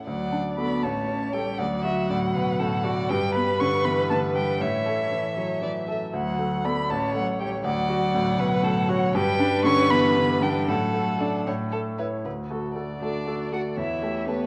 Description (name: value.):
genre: quick classical-period movement for piano quartet.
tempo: 79 BPM (dotted quarters).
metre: 6/8.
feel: straight.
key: D major.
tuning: A4 = 440 Hz.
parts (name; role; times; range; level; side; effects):
warm violin; melody; 0.0-14.5 s; A4 to C#6; -31 LUFS; equal; none.
bright grand piano; accompaniment; 0.0-14.5 s; A1 to D5; -29 LUFS; equal; none.
rich cello; second line; 0.1-14.5 s; E3 to F#4; -32 LUFS; equal; none.
rich violin; second line; 0.1-14.5 s; A4 to F#5; -32 LUFS; equal; none.
room: moderate recital hall reverb, RT60 1.7 s.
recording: worn, warbling old tape, cassette tape, warbly pitch drift.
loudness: -25 LUFS.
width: mono.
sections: 0.1-12.3 A section; 12.3-14.5 B section.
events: none.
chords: 0.1 D; 0.8 A7; 1.6 D; 3.1 G; 4.6 A; 6.1 D; 6.9 A7; 7.6 D; 9.1 G; 10.7 D/A; 11.5 A; 12.3 D; 13.8 A7/E.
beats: | 0.06 0.83 | 1.59 2.35 | 3.10 3.85 | 4.61 5.37 | 6.13 6.90 | 7.65 8.39 | 9.15 9.91 | 10.69 11.47 | 12.25 13.02 | 13.78.